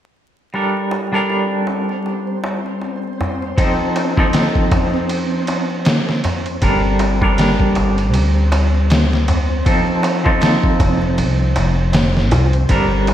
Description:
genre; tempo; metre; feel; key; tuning
trip hop; 79 BPM; 4/4; swing 57% on 16ths; G minor; A4 = 440 Hz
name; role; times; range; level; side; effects
clean electric guitar; accompaniment; 0.5-13.1 s; F3 to Bb4; -19 LUFS; equal; tremolo, low-pass filter, tape echo
darbuka; percussion; 0.5-13.1 s; none; -25 LUFS; equal; none
flickering grainy texture; texture; 1.5-13.1 s; C4 to C5; -25 LUFS; equal; built-in reverb, lush chorus
trip hop sampler-style drum kit; drums; 3.6-13.1 s; kick drum, ride cymbal, snare drum; -18 LUFS; equal; overdrive, vintage 12-bit sampler grit, studio reverb, gated reverb
upright bass; bass; 6.6-13.1 s; F1 to D2; -17 LUFS; equal; none
room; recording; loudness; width
moderate lush hall reverb, RT60 1.8 s, digital ambience; bright 1980s-style digital production, vinyl crackle; -14 LUFS; side -11 dB against mid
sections
0.5-6.6 A section; 6.6-13.1 B section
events
break 5.1-6.6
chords
0.5 Gmadd9; 3.6 F7; 6.6 Gmadd9; 9.7 F7

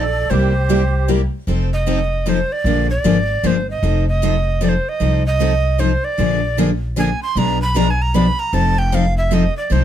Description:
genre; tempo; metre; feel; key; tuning
acoustic string swing (jazz manouche); 153 BPM; 3/4; swing 62% on 8ths; F mixolydian; A4 = 440 Hz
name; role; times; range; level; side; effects
breathy tenor recorder; melody; 0.0-9.8 s; C5 to C6; -21 LUFS; right 3 dB; plate reverb
musette accordion; second line; 0.0-1.1 s; G4 to A4; -25 LUFS; right 11 dB; none
picked steel-string acoustic guitar; accompaniment; 0.0-9.8 s; B2 to B4; -20 LUFS; left 6 dB; none
picked steel-string acoustic guitar; accompaniment; 0.0-9.8 s; B2 to B4; -23 LUFS; right 5 dB; none
upright bass; bass; 0.0-9.8 s; F1 to C2; -18 LUFS; equal; none
room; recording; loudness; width
light reverb; none; -15 LUFS; side -10 dB against mid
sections
0.0-1.5 A section; 1.5-9.8 B section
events
recorder solo 1.5-9.8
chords
0.3 C7; 1.5 F7; 2.7 Bb7; 3.8 F7; 6.2 Bb7; 7.4 Bdim7; 8.5 F7

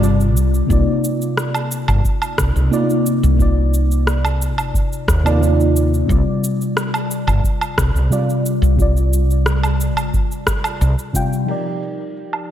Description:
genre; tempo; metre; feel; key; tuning
sunset chillout; 89 BPM; 4/4; straight; C minor; A4 = 440 Hz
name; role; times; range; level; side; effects
mellow FM electric piano; accompaniment; 0.0-12.5 s; C3 to G5; -19 LUFS; left 1 dB; chorus, phaser, auto-pan, tape echo
woody fretless electric bass; bass; 0.0-10.9 s; G1 to Eb2; -16 LUFS; equal; lush chorus
deep house drum kit; drums; 0.0-12.5 s; cabasa, crash cymbal, rim click, woodblock; -23 LUFS; right 1 dB; low-pass filter on snare, low-pass filter on perc, low-pass filter on cymbals, slapback echo
electronic kick drum; drums; 0.7-11.3 s; none; -20 LUFS; equal; none
room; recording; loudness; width
moderate lush hall reverb, RT60 2.0 s; big arena sound; -15 LUFS; side -11 dB against mid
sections
0.0-11.5 A section; 11.5-12.5 B section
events
filter sweep on drum 11.5-12.5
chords
0.0 G7sus4; 0.7 Cm11; 6.1 G7sus4; 11.5 F13sus4

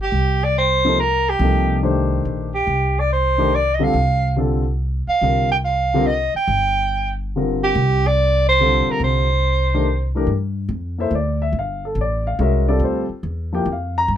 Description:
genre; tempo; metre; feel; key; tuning
modal jazz; 142 BPM; 3/4; swing 67% on 8ths; C dorian, G dorian from 10.3 s; A4 = 440 Hz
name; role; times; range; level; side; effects
breathy soprano saxophone; melody; 0.0-10.1 s; G4 to G5; -18 LUFS; right 2 dB; none
upright bass; bass; 0.0-14.2 s; G1 to G2; -20 LUFS; equal; none
dark grand piano; accompaniment; 0.8-14.1 s; C3 to Bb5; -21 LUFS; left 3 dB; none
room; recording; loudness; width
little or no reverb; close, detailed microphones; -16 LUFS; side -10 dB against mid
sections
0.1-10.3 A section; 10.3-14.2 B section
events
none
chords
0.1 Cm9; 2.7 Fadd9/C; 5.2 Csus2; 7.7 Fadd9/C; 10.3 Gm11

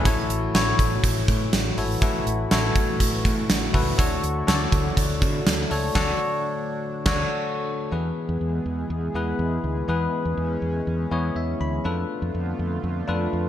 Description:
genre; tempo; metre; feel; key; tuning
1980s-style pop; 122 BPM; 4/4; straight; A major; A4 = 438 Hz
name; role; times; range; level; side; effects
bell-like tine electric piano; accompaniment; 0.0-13.5 s; A2 to B5; -26 LUFS; left 3 dB; lush chorus
biting overdriven guitar; accompaniment; 0.0-0.6 s; E3 to A3; -36 LUFS; right 4 dB; none
chorused pulse-width pad; sustained chords; 0.0-13.5 s; D3 to G#4; -32 LUFS; right 2 dB; none
mellow fretless electric bass; bass; 0.1-13.5 s; G#1 to D3; -27 LUFS; equal; none
gated 80s drum kit; drums; 0.1-7.2 s; crash cymbal, hi-hat, kick drum, snare drum; -22 LUFS; right 1 dB; gated reverb
room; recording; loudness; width
moderate lush hall reverb, RT60 1.8 s, small room ambience; bright 1980s-style digital production; -21 LUFS; side -11 dB against mid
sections
0.1-7.9 A section; 7.9-13.5 B section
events
band accent 6.0-7.9; tine electric piano fill 11.1-11.9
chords
0.1 A6; 4.0 Dmaj7; 7.9 E; 11.9 Dm6

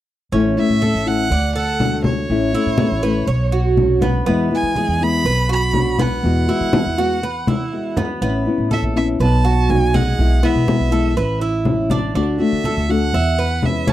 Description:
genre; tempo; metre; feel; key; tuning
latin, Cuban son and guajira; 122 BPM; 4/4; straight; A major; A4 = 438 Hz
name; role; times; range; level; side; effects
nylon-string guitar; accompaniment; 0.3-13.9 s; B2 to F#4; -20 LUFS; left 4 dB; none
Cuban tres; arpeggios; 0.3-13.9 s; G#3 to E5; -23 LUFS; right 4 dB; slapback echo
upright bass; bass; 0.3-13.9 s; A1 to E3; -20 LUFS; equal; none
congas; percussion; 0.3-13.9 s; none; -21 LUFS; left 2 dB; none
warm violin; melody; 0.6-13.9 s; C#5 to B5; -24 LUFS; right 4 dB; none
room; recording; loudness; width
little or no reverb; dry, close 1970s-style studio recording; -15 LUFS; side -13 dB against mid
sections
0.3-13.9 A section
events
drum fill 7.5-8.2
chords
0.3 A; 1.3 D; 2.3 A; 3.3 Bmadd9; 4.3 E; 5.3 Bm; 6.2 Eadd9; 8.2 Aadd9; 9.2 B; 10.2 E/B; 11.2 Aadd9; 12.2 D; 13.1 E6

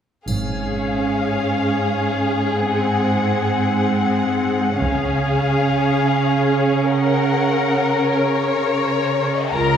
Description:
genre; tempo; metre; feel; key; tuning
classical, slow romantic movement for symphony orchestra; 37-58 BPM (dotted quarters); 6/8; rubato; Db major; A4 = 440 Hz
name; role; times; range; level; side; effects
rich studio violin section; melody; 0.3-9.8 s; Db5 to Bb5; -24 LUFS; left 4 dB; none
rich studio violin section; second line; 0.3-9.8 s; Ab4 to Bb4; -22 LUFS; left 3 dB; none
rich studio viola section; accompaniment; 0.3-9.8 s; Ab3 to F4; -22 LUFS; right 2 dB; none
rich studio cello section; bass; 0.3-9.8 s; Ab2 to Db3; -22 LUFS; right 2 dB; none
rich studio double bass section; bass; 0.3-1.0, 4.8-5.5, 9.5-9.8 s; Ab1 to Db2; -25 LUFS; right 2 dB; none
triangle; percussion; 0.3-1.8 s; none; -37 LUFS; left 1 dB; none
room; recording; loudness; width
wet concert hall reverb, RT60 2.0 s; heard from further back in the room; -17 LUFS; side -8 dB against mid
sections
0.3-9.5 A section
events
none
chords
0.3 Db/Ab; 2.6 Ab7; 4.8 Db

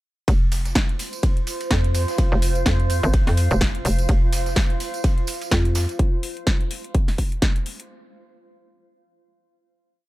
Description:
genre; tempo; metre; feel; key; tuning
bass house; 126 BPM; 4/4; swing 57% on 16ths; unclear; A4 = 435 Hz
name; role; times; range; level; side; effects
hollow knocking FM bass; bass; 0.3-5.9 s; F1 to F2; -20 LUFS; equal; tube saturation, sidechain pumping
big-room dance drum kit; drums; 0.3-7.9 s; hi-hat, snare drum; -27 LUFS; equal; none
dusty soul sampler-style drum kit; drums; 0.3-5.9 s; hi-hat, ride cymbal, snare drum; -37 LUFS; right 2 dB; overdrive, sidechain pumping on cymbals, high-pass filter on cymbals, high-pass filter on snare, sidechain pumping on hats, high-pass filter on hats, high-pass filter on room
electronic kick drum; drums; 0.3-7.5 s; none; -20 LUFS; equal; none
tambourine; percussion; 0.3-6.0 s; none; -35 LUFS; right 6 dB; none
granular cloud pad; texture; 1.0-6.0 s; F4 to F5; -31 LUFS; right 2 dB; built-in reverb, sidechain pumping
marimba with soft mallets; melody; 5.5-5.7 s; F4; -32 LUFS; left 2 dB; tape echo
room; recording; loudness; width
digital ambience; dark, warm production; -19 LUFS; side -17 dB against mid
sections
0.3-7.9 drop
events
drop 0.3-7.9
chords
0.3 F5

